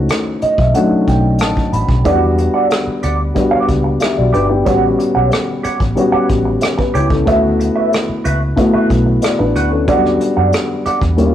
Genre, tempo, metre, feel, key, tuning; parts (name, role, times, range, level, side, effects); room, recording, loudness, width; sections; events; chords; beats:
lush 1970s-style soul; 92 BPM; 4/4; straight; A4 = 440 Hz
dark grand piano; accompaniment; 0.0-11.3 s; F#3 to B5; -15 LUFS; left 2 dB
vintage muted fingered electric bass; bass; 0.0-11.3 s; G1 to F#2; -18 LUFS; equal
vintage brush drum kit; drums; 0.1-11.3 s; hi-hat, kick drum, rim click; -20 LUFS; equal
mellow electric guitar; riff; 2.1-11.2 s; F#4 to G5; -18 LUFS; right 4 dB; wah
moderate stone room reverb, RT60 1.4 s; rough rehearsal-room recording; -12 LUFS; side -11 dB against mid
0.0-11.3 A section
grand piano fill 0.1-2.1, 11.2
0.0 B7; 2.1 Em9; 4.7 A13; 7.3 D69; 9.9 Em9
0.10 0.75 1.40 | 2.06 2.71 3.36 4.01 | 4.66 5.32 5.97 6.62 | 7.27 7.92 8.57 9.23 | 9.88 10.53 11.18